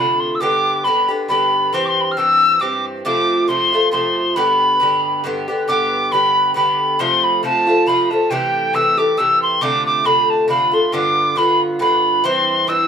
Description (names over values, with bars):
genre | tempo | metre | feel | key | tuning
celtic folk, Celtic waltz | 137 BPM | 3/4 | swing 55% on 8ths | G mixolydian | A4 = 440 Hz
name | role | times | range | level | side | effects
mellow tin whistle | melody | 0.0-12.9 s | G5 to F6 | -15 LUFS | equal | none
Irish bouzouki | accompaniment | 0.0-12.9 s | G2 to G4 | -19 LUFS | left 1 dB | none
room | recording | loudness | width
moderate studio reverb, RT60 0.6 s | none | -14 LUFS | side -7 dB against mid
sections
0.0-5.7 A section; 5.7-12.9 A section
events
none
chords
0.4 G; 1.7 C/G; 3.1 F; 4.4 G; 7.0 F; 8.3 Am7; 9.6 F6; 10.9 G7; 12.2 C/G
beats
| 0.42 0.86 1.30 | 1.74 2.17 2.62 | 3.05 3.49 3.93 | 4.37 4.81 5.25 | 5.68 6.12 6.56 | 7.00 7.43 7.87 | 8.31 8.75 9.18 | 9.62 10.06 10.49 | 10.93 11.37 11.81 | 12.24 12.68